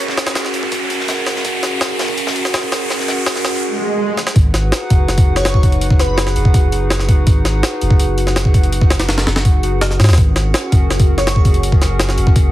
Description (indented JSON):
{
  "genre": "drum and bass, jungle",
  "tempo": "165 BPM",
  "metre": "4/4",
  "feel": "straight",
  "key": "G# minor",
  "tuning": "A4 = 440 Hz",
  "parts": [
    { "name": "warbly tape-like pad", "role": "sustained chords", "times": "0.0-12.5 s", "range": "C#4 to F#5", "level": "-22 LUFS", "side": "right 1 dB", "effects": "chorus, built-in reverb, vintage 12-bit sampler grit" },
    { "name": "riser and swell", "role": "sound effects", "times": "0.0-4.4 s", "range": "none", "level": "-21 LUFS", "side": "right 2 dB", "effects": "none" },
    { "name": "jungle sampler-style drum kit", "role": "drums", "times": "0.1-12.4 s", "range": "hi-hat, kick drum, snare drum", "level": "-14 LUFS", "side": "equal", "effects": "high-pass filter on hats, high-pass filter on kick, high-pass filter on snare" },
    { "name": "natural country drum kit", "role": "drums", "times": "0.1-3.6 s", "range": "hi-hat, snare drum", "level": "-26 LUFS", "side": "left 2 dB", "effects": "high-pass filter on hats, high-pass filter on snare, high-pass filter on room" },
    { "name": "soft dub sub bass", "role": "bass", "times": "4.4-12.5 s", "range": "F#1 to G#2", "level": "-16 LUFS", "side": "equal", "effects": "none" },
    { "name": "airy dreamy lead", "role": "melody", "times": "5.4-6.3, 11.2-11.4 s", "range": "B4 to C#5", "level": "-25 LUFS", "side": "left 1 dB", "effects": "chorus, dub echo" }
  ],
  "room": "light reverb",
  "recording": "heavily compressed radio sound, multiband compression, vinyl crackle",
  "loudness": "-12 LUFS",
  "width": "side -14 dB against mid",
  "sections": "0.0-4.4 A section; 4.4-12.5 B section",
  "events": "build-up 0.0-4.4; riser 0.0-3.6; filter sweep on ambient pad 0.0-4.4; swell 3.6-4.4; drum fill 4.2; drop 4.4-12.5",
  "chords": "0.0 F#add9; 4.4 G#m7; 10.2 F#add9"
}